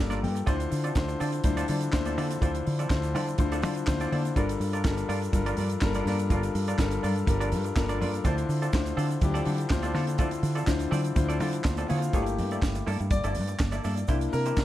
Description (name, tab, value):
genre	disco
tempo	123 BPM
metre	4/4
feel	straight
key	G dorian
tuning	A4 = 440 Hz
part	clear concert grand piano	accompaniment	0.0-14.6 s	D3 to C6	-30 LUFS	left 4 dB	none
part	fingered electric bass	bass	0.0-14.6 s	G1 to D3	-29 LUFS	right 1 dB	none
part	semi-hollow electric guitar	accompaniment	0.1-14.6 s	Bb3 to D5	-36 LUFS	right 3 dB	none
part	tight funk drum kit	drums	0.1-14.6 s	handclaps, hi-hat, kick drum, snare drum	-29 LUFS	right 1 dB	none
part	congas	percussion	0.1-14.6 s	none	-38 LUFS	left 4 dB	none
part	tube shaker	percussion	0.1-14.6 s	none	-49 LUFS	right 8 dB	none
room	studio reverb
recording	dark, warm production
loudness	-25 LUFS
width	side -13 dB against mid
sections	0.0-12.1 A section; 12.1-14.6 B section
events	grand piano solo 12.1-14.6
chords	0.5 Dm7; 4.4 Gm7; 8.2 Dm7; 12.1 Gm69; 14.1 C7